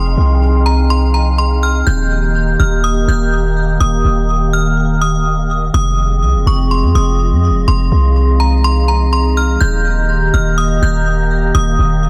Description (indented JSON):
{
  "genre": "hip hop",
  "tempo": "124 BPM",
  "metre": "4/4",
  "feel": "half-time",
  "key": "F minor",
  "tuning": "A4 = 441 Hz",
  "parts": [
    { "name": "metallic FM bell", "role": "melody", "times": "0.0-12.1 s", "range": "Bb5 to G6", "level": "-21 LUFS", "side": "equal", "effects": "chorus, digital delay" },
    { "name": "warbly tape-like pad", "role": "sustained chords", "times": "0.0-12.1 s", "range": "Eb3 to Bb5", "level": "-21 LUFS", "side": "equal", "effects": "chorus, built-in reverb" },
    { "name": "warm 808-style bass", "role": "bass", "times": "0.0-12.1 s", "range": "Eb1 to F2", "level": "-16 LUFS", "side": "equal", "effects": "none" },
    { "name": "wind-like tuned noise texture", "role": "texture", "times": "0.0-12.1 s", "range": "Ab3 to F5", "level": "-31 LUFS", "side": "equal", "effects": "built-in reverb" }
  ],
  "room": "digital ambience",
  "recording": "dense, heavily limited modern master",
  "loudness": "-14 LUFS",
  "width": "mono",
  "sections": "0.0-12.1 A section",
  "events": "none",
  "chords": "0.0 Fm7; 1.9 Eb; 5.7 Fm7; 9.6 Eb",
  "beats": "0.42 0.90 1.39 | 1.87 2.35 2.84 3.32 | 3.81 4.29 4.77 5.26 | 5.74 6.22 6.71 7.19 | 7.68 8.16 8.64 9.13 | 9.61 10.10 10.58 11.06 | 11.55 12.03"
}